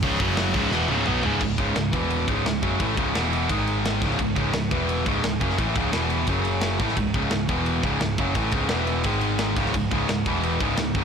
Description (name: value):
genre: heavy metal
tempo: 173 BPM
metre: 4/4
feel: straight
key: C# minor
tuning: A4 = 439 Hz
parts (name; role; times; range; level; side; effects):
- distorted electric guitar; riff; 0.0-11.0 s; C#2 to B3; -26 LUFS; left 10 dB; overdrive
- heavy high-gain guitar; riff; 0.0-11.0 s; C#2 to B3; -26 LUFS; right 10 dB; distortion
- scooped high-gain guitar; riff; 0.0-1.4 s; C#2 to B3; -27 LUFS; right 1 dB; distortion
- overdriven picked electric bass; bass; 0.0-11.0 s; C#1 to B1; -28 LUFS; equal; none
- tight metal drum kit; drums; 0.0-11.0 s; crash cymbal, hi-hat, kick drum, ride cymbal, snare drum, toms; -28 LUFS; equal; none
room: light reverb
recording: blown-out, overdriven recording, overdrive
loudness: -21 LUFS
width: side -6 dB against mid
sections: 0.0-1.4 A section; 1.4-11.0 B section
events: drum fill 0.7-1.4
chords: 0.2 F#5; 0.6 C#m; 1.4 C#5; 1.9 E5; 2.3 C#m; 3.2 E5; 3.5 G#5; 4.0 C#5; 4.7 E5; 5.1 C#m; 5.9 E5; 6.3 F#5; 6.8 C#m; 7.5 E5; 7.8 C#m; 8.7 E5; 9.1 G#5; 9.6 C#5; 10.3 E5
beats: | 0.03 0.38 0.72 1.07 | 1.42 1.76 2.11 2.46 | 2.80 3.15 3.50 3.85 | 4.19 4.54 4.89 5.24 | 5.58 5.93 6.28 6.62 | 6.97 7.32 7.67 8.01 | 8.36 8.71 9.05 9.40 | 9.75 10.09 10.44 10.79